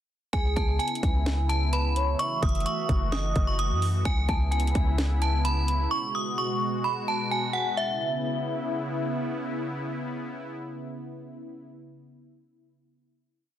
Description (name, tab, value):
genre	hip hop, trap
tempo	129 BPM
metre	4/4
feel	half-time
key	C# minor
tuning	A4 = 440 Hz
part	metallic FM bell	melody	0.3-9.1 s	E5 to D#6	-29 LUFS	equal	chorus, phaser, ping-pong delay
part	gliding portamento lead	second line	0.3-3.6 s	G#4 to E5	-36 LUFS	right 5 dB	chorus, ping-pong delay
part	sweeping resonant pad	sustained chords	0.3-11.7 s	B2 to F#4	-32 LUFS	equal	chorus
part	warm 808-style bass	bass	0.3-5.9 s	F#1 to F#2	-26 LUFS	equal	none
part	trap drum kit	drums	0.3-5.8 s	hi-hat, kick drum, snare drum	-28 LUFS	equal	none
room	little or no reverb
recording	dense, heavily limited modern master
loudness	-24 LUFS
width	side -11 dB against mid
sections	0.3-7.8 hook; 7.8-11.5 final chord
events	none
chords	0.3 C#m7; 2.2 F#m7; 4.1 C#m7; 5.9 G#m7; 7.8 C#m7